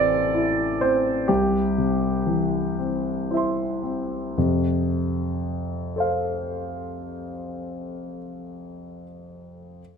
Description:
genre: neoclassical minimalist piano.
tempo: 37-44 BPM (dotted quarters).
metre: 6/8.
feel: rubato.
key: F major.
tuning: A4 = 440 Hz.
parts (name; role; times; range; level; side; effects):
warm concert grand piano; solo; 0.0-9.8 s; A1 to C6; -23 LUFS; equal; none.
room: light reverb.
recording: close, detailed microphones.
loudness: -22 LUFS.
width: side -6 dB against mid.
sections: 0.0-4.4 A section; 4.4-7.6 B section.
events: slowing down 0.0-4.4.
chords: 0.0 Am; 1.3 C; 4.4 F.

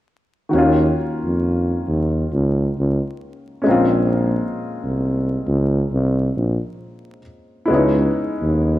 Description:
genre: R&B, neo-soul.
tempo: 67 BPM.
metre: 4/4.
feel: swing 58% on 16ths.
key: Eb dorian.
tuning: A4 = 442 Hz.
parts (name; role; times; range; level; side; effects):
warm baby grand piano; accompaniment; 0.5-8.8 s; Eb3 to Gb4; -20 LUFS; left 1 dB; none.
mellow tuba; bass; 0.5-8.8 s; Bb1 to F2; -19 LUFS; equal; none.
room: wet stone room reverb, RT60 1.4 s.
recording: band playing live in one room, vinyl crackle.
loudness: -17 LUFS.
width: side -15 dB against mid.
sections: 0.5-8.8 A section.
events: none.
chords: 0.5 Ebm9; 3.7 Bbm9; 7.7 Dbm9.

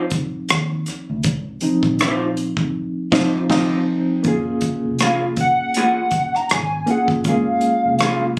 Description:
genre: R&B, neo-soul.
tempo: 80 BPM.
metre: 4/4.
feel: swing 54% on 16ths.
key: unclear.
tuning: A4 = 442 Hz.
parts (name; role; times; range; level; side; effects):
bright reed electric piano; accompaniment; 0.0-8.4 s; F3 to Ab4; -23 LUFS; equal; tremolo.
unplugged drum kit; drums; 0.1-8.4 s; crash cymbal, hi-hat, kick drum, rim click, snare drum; -25 LUFS; equal; none.
vintage muted fingered electric bass; bass; 0.5-8.4 s; F1 to Eb2; -28 LUFS; equal; none.
electric guitar through a small old amp; second line; 2.0-8.2 s; Bb3 to C5; -24 LUFS; equal; none.
hollow square lead; melody; 5.0-8.4 s; F5 to Bb5; -22 LUFS; equal; chorus, slapback echo.
room: light reverb.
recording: recorded on a phone in the room, club reverb, compression.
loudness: -19 LUFS.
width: mono.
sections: 0.0-4.2 A section; 4.2-8.4 B section.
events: reed electric piano solo 0.0-4.2; band accent 2.8-4.2.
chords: 0.0 Dbmaj9; 4.2 Gbmaj9.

